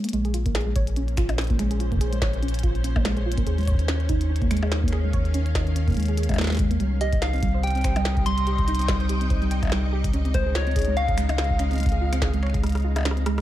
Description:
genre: IDM.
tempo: 144 BPM.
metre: 4/4.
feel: swing 56% on 16ths.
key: Bb dorian.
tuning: A4 = 440 Hz.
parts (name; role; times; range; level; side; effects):
soft round pluck; arpeggios; 0.0-13.4 s; G3 to G5; -29 LUFS; right 2 dB; wide subtle chorus, cassette tape, ping-pong delay.
glitchy drum kit; drums; 0.0-13.4 s; cabasa, finger snaps, hi-hat, percussion blips, rim click, snare drum; -31 LUFS; equal; studio reverb.
soft string machine; sustained chords; 0.1-13.4 s; Bb2 to G5; -33 LUFS; left 1 dB; ensemble chorus.
warm sub bass; bass; 0.1-13.4 s; Bb1 to Eb2; -24 LUFS; equal; tube saturation.
electronic kick drum; drums; 0.5-12.6 s; none; -26 LUFS; equal; studio reverb.
soft struck synth lead; melody; 7.0-13.1 s; C5 to C6; -28 LUFS; left 1 dB; chorus, ping-pong delay.
room: light reverb.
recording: dark, warm production.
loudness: -21 LUFS.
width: side -13 dB against mid.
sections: 0.1-13.4 A section.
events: kick drops out 12.6-13.4; drum fill 12.6-13.4.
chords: 0.1 Bbm7; 3.5 Eb7sus4; 6.8 Cm; 10.1 Dbmaj7.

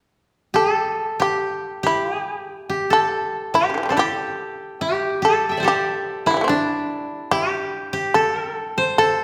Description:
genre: japanese traditional, Japanese chamber music.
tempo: 72 BPM.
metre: 4/4.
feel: rubato.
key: unclear.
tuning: A4 = 440 Hz.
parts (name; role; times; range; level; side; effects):
koto; second line; 0.5-9.2 s; D4 to G5; -24 LUFS; equal; none.
shamisen; melody; 0.6-9.2 s; C3 to A4; -23 LUFS; equal; none.
room: wet recital hall reverb, RT60 1.6 s.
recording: none.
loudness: -21 LUFS.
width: mono.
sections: 0.6-9.2 A section.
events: none.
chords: none.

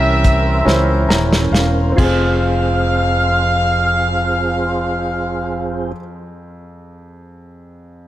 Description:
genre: slow gospel.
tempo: 43 BPM (dotted quarters).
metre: 6/8.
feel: straight.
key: F minor.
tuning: A4 = 440 Hz.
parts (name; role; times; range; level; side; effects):
clear horn section; melody; 0.0-5.9 s; G4 to F5; -18 LUFS; equal; none.
warm baby grand piano; accompaniment; 0.0-8.1 s; F2 to Bb5; -23 LUFS; equal; none.
percussive tonewheel organ; sustained chords; 0.0-5.9 s; E3 to C5; -23 LUFS; right 3 dB; fast rotary speaker, chorus vibrato.
fingered electric bass; bass; 0.0-5.9 s; Eb1 to Db2; -19 LUFS; equal; none.
warm soul drum kit; drums; 0.2-2.2 s; crash cymbal, hi-hat, kick drum, snare drum; -18 LUFS; equal; none.
room: light reverb, studio reverb.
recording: none.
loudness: -14 LUFS.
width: side -13 dB against mid.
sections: 0.0-2.0 A section; 2.0-7.6 B section.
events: slowing down 0.0-2.0; drum fill 0.7-2.0; grand piano fill 0.7-2.0.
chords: 0.0 C7b9; 2.0 Fm.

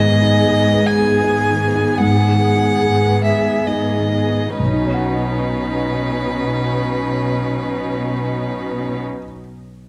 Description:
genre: cinematic.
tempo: 64-81 BPM.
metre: 3/4.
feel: rubato.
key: B major.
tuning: A4 = 440 Hz.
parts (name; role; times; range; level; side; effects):
rich violin; melody; 0.0-9.0 s; B4 to G#5; -24 LUFS; equal; none.
dark grand piano; accompaniment; 0.0-9.9 s; B1 to F#5; -24 LUFS; equal; none.
dark studio viola section; accompaniment; 0.0-9.0 s; B3 to G#4; -24 LUFS; equal; none.
rich studio cello section; bass; 0.0-9.0 s; G#2 to B2; -23 LUFS; equal; none.
room: light reverb.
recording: close, detailed microphones.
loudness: -18 LUFS.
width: mono.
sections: 0.0-4.6 A section; 4.6-9.9 B section.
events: slowing down 0.0-4.6.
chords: 0.0 G#m; 4.6 Badd9.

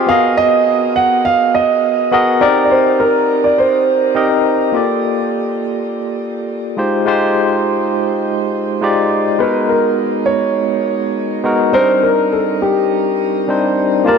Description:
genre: chillout.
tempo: 103 BPM.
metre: 4/4.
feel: swing 54% on 16ths.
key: unclear.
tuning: A4 = 440 Hz.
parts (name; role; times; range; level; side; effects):
barky tine electric piano; accompaniment; 0.0-14.2 s; G3 to A5; -15 LUFS; moving between left 3 dB and right 4 dB; medium stereo tremolo, auto-pan, shimmer reverb, ping-pong delay.
dark concert grand piano; melody; 0.1-4.4, 9.4-14.2 s; G4 to Gb5; -14 LUFS; right 2 dB; shimmer reverb, tape echo.
room: wet lush hall reverb, RT60 2.4 s.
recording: none.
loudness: -12 LUFS.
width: side -6 dB against mid.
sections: 0.0-4.7 A section; 4.7-14.1 B section.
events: none.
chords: 0.1 Abm9; 2.4 Cm9; 4.7 Gm9; 6.8 Fm9; 9.4 Abm9; 11.7 Cmadd9.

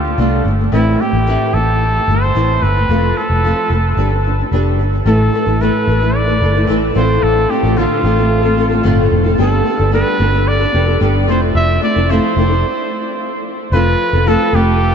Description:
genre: acoustic pop.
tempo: 111 BPM.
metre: 4/4.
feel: straight.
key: unclear.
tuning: A4 = 436 Hz.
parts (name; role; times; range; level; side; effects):
clear trumpet; melody; 0.0-14.9 s; E4 to E5; -18 LUFS; right 1 dB; ping-pong delay.
nylon-string guitar; accompaniment; 0.0-14.9 s; A2 to B4; -16 LUFS; left 1 dB; double-tracked left and right.
vintage muted fingered electric bass; bass; 0.0-14.9 s; F1 to D2; -15 LUFS; equal; none.
room: wet huge ambient reverb, RT60 7.6 s.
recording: dreamy mix soaked in reverb, nothing above 7.8 kHz.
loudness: -12 LUFS.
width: side -7 dB against mid.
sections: 0.0-5.1 A section; 5.1-13.7 B section; 13.7-14.9 C section.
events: stop 12.6-13.7.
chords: 0.0 Dm; 0.7 Amadd9; 2.9 F; 4.0 G; 5.1 Asus2; 7.0 Dm7/A; 9.4 Gadd9; 11.3 Fmaj7; 13.7 F.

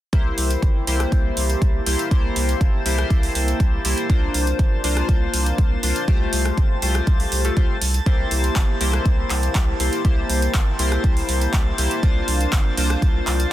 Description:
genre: progressive house.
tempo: 121 BPM.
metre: 4/4.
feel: straight.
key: C mixolydian.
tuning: A4 = 441 Hz.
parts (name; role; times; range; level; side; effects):
chorused polysynth; stabs; 0.1-13.5 s; A3 to C5; -24 LUFS; left 2 dB; sidechain pumping, dub echo.
round analog bass; bass; 0.1-13.5 s; G1 to C2; -23 LUFS; equal; sidechain pumping.
big-room dance drum kit; drums; 0.1-13.5 s; handclaps, hi-hat, rim click; -26 LUFS; right 1 dB; sidechain pumping on hats, soft clipping on snare.
electronic kick drum; drums; 0.1-13.1 s; none; -18 LUFS; equal; none.
drifting glass-harmonics texture; texture; 1.2-13.5 s; A5 to A6; -34 LUFS; right 3 dB; chorus, built-in reverb, sidechain pumping.
room: little or no reverb.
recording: dense, heavily limited modern master.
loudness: -17 LUFS.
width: side -14 dB against mid.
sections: 0.1-13.5 A section.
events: none.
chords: 0.1 C7; 4.1 Bbadd9; 6.1 Fadd9; 8.1 C7; 12.0 Bbadd9.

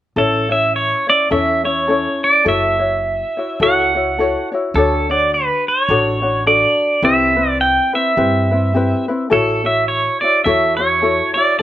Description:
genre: Hawaiian.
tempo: 105 BPM.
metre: 4/4.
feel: swing 59% on 8ths.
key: A major.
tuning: A4 = 440 Hz.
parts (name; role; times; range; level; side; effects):
pedal steel guitar; melody; 0.2-11.6 s; A4 to G5; -15 LUFS; right 1 dB; slapback echo.
ukulele; accompaniment; 0.2-11.6 s; C4 to C#5; -19 LUFS; left 3 dB; slapback echo.
upright bass; bass; 0.2-11.2 s; F#1 to G2; -24 LUFS; equal; none.
room: little or no reverb.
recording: recorded outdoors, with no room sound.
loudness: -13 LUFS.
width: side -12 dB against mid.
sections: 0.2-11.6 A section.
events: none.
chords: 0.2 A; 2.5 F#m7; 4.7 Dmaj7; 7.0 Cmaj7; 9.3 A6.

